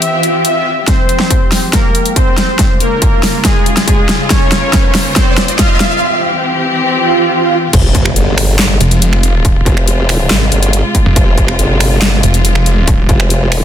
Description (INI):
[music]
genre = heavy wobble dubstep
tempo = 140 BPM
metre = 4/4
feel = half-time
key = F harmonic minor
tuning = A4 = 436 Hz
[part]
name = soft supersaw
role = melody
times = 0.0-6.0 s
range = Ab3 to F5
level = -16 LUFS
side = left 1 dB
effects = digital delay
[part]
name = warm symphonic string section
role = sustained chords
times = 0.0-13.6 s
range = C3 to G4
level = -18 LUFS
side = left 1 dB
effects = sidechain pumping, low-pass filter
[part]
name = dubstep drum kit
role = drums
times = 0.0-13.6 s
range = crash cymbal, finger snaps, handclaps, hi-hat, snare drum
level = -15 LUFS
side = equal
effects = studio reverb
[part]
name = swell, riser and impact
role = sound effects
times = 0.1-9.4 s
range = none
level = -18 LUFS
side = right 2 dB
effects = none
[part]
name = electronic kick drum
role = drums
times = 0.9-13.2 s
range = none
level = -12 LUFS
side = equal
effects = distortion, studio reverb
[part]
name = formant-sweep wobble bass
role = bass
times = 7.7-13.6 s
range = F1 to Ab1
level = -13 LUFS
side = equal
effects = chorus, overdrive
[part]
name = snarling distorted saw bass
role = bass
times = 8.8-13.1 s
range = F1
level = -11 LUFS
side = equal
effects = distortion, overdrive
[sound]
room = light reverb, digital ambience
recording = dense, heavily limited modern master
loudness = -9 LUFS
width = side -10 dB against mid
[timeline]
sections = 0.9-7.7 A section; 7.7-13.6 B section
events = swell 0.1-0.9, 7.0-7.7; build-up 0.9-7.7; drum fill 0.9-6.0; riser 0.9-6.0; filter sweep on string section 0.9-7.7; drop 7.7-13.6; impact 7.7-9.4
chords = 0.0 C; 0.9 Fmadd9; 2.6 Db; 4.3 Bbm; 6.0 C; 7.7 Fm